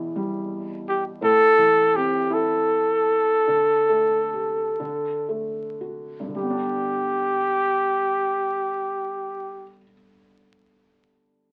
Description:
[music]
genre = children's music, lullaby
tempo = 35-57 BPM (dotted quarters)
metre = 6/8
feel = rubato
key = G major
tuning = A4 = 440 Hz
[part]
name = felt-muted upright piano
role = accompaniment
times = 0.0-11.5 s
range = E2 to G4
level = -32 LUFS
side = equal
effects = none
[part]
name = mellow trumpet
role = melody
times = 0.9-9.8 s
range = G4 to A4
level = -22 LUFS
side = equal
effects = none
[sound]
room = moderate studio ambience, RT60 0.5 s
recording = very old 78 rpm record, vinyl crackle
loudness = -22 LUFS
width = mono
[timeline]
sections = 0.0-6.4 A section; 6.4-11.5 B section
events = slowing down 1.2-6.4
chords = 0.0 Em; 1.2 Am; 3.5 Dsus4; 4.8 D; 6.4 G

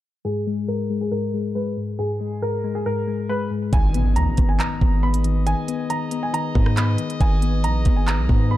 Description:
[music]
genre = hip hop, drill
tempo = 138 BPM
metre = 4/4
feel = half-time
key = G# minor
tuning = A4 = 440 Hz
[part]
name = dark baby grand piano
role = melody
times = 0.2-8.6 s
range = G#4 to B5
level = -28 LUFS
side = right 2 dB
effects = tape echo
[part]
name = soft electric-piano-like synth keys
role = accompaniment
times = 0.2-8.6 s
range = G#2 to B3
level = -25 LUFS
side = left 6 dB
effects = chorus
[part]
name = mellow brass ensemble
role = sustained chords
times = 3.7-8.6 s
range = G#3 to D#5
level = -35 LUFS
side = equal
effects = none
[part]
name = distorted 808-style bass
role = bass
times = 3.7-8.6 s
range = G#1 to G#2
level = -21 LUFS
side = equal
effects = distortion
[part]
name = drill drum kit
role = drums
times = 3.7-8.4 s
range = handclaps, hi-hat, kick drum, rim click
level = -20 LUFS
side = right 1 dB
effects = none
[part]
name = impact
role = sound effects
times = 3.7-5.5 s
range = none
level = -29 LUFS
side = right 1 dB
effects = none
[sound]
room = digital ambience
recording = dark, warm production, low-pass filter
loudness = -19 LUFS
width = side -14 dB against mid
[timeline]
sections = 0.2-3.7 A section; 3.7-8.6 B section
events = filter sweep 0.2-3.7; impact 3.7-5.5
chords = 0.2 N.C.; 3.7 G#m

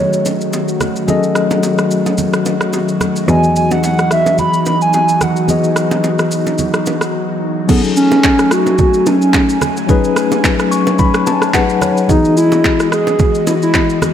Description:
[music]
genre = amapiano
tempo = 109 BPM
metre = 4/4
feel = swing 55% on 16ths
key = F# dorian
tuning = A4 = 440 Hz
[part]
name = hollow clarinet-like synth lead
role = melody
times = 0.0-14.0 s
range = B3 to B5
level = -14 LUFS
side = right 1 dB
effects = chorus, digital delay
[part]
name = tine electric piano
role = accompaniment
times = 0.0-14.1 s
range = E3 to C#6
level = -16 LUFS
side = left 5 dB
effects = fast tremolo
[part]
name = airy breathy pad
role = sustained chords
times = 0.0-14.1 s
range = D#3 to G#5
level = -18 LUFS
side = right 1 dB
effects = chorus, sidechain pumping
[part]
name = clear cello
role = bass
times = 0.0-7.1 s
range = E2 to F#2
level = -17 LUFS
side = right 1 dB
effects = none
[part]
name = deep house drum kit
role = drums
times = 0.1-14.1 s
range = crash cymbal, handclaps, kick drum, rim click, shaker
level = -18 LUFS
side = right 1 dB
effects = none
[part]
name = bongos and congas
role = percussion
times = 0.3-14.1 s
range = none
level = -22 LUFS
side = right 4 dB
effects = none
[sound]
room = light reverb, digital ambience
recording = none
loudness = -11 LUFS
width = side -9 dB against mid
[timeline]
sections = 0.0-7.7 A section; 7.7-14.1 B section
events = break 7.1-7.7; tine electric piano fill 10.4-12.1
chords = 0.0 F#m69; 3.3 Emaj9; 7.7 F#m69; 12.1 Emaj9

